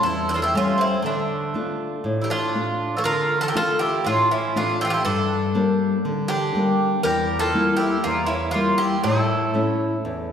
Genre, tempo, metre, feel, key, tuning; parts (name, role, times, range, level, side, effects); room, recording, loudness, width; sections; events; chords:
greek folk, Greek bouzouki band; 120 BPM; 4/4; straight; D minor, D harmonic minor from 3.0 s; A4 = 440 Hz
Greek bouzouki; melody; 0.0-10.3 s; D4 to C#5; -24 LUFS; right 1 dB
Greek bouzouki; second line; 0.0-10.3 s; A3 to A4; -26 LUFS; right 1 dB
nylon-string guitar; accompaniment; 0.0-10.3 s; E2 to F4; -23 LUFS; left 2 dB
wet concert hall reverb, RT60 2.0 s; recorded in a church or concert hall; -19 LUFS; side -8 dB against mid
0.0-3.0 A section; 3.0-10.3 B section
0.0 A7; 1.0 Dm; 5.0 Gm; 7.0 Edim; 9.0 A